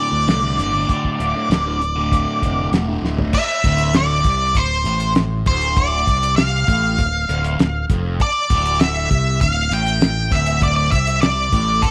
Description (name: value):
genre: psychedelic rock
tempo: 99 BPM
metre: 4/4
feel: straight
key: D minor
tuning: A4 = 441 Hz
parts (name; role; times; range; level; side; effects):
- octave-fuzz lead guitar; melody; 0.0-11.9 s; A4 to G5; -22 LUFS; equal; distortion, slapback echo
- fuzz guitar; riff; 0.0-11.9 s; D2 to D3; -26 LUFS; equal; distortion, phaser
- fingered electric bass; bass; 0.1-11.9 s; D1 to D2; -25 LUFS; equal; none
- cloth-damped thuddy drum kit; drums; 0.3-11.9 s; crash cymbal, hi-hat, kick drum, snare drum, toms; -21 LUFS; equal; none
room: light reverb, studio reverb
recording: none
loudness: -18 LUFS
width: mono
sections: 0.0-3.3 A section; 3.3-11.9 B section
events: drum fill 3.0-3.3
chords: 0.0 D5; 3.3 Dm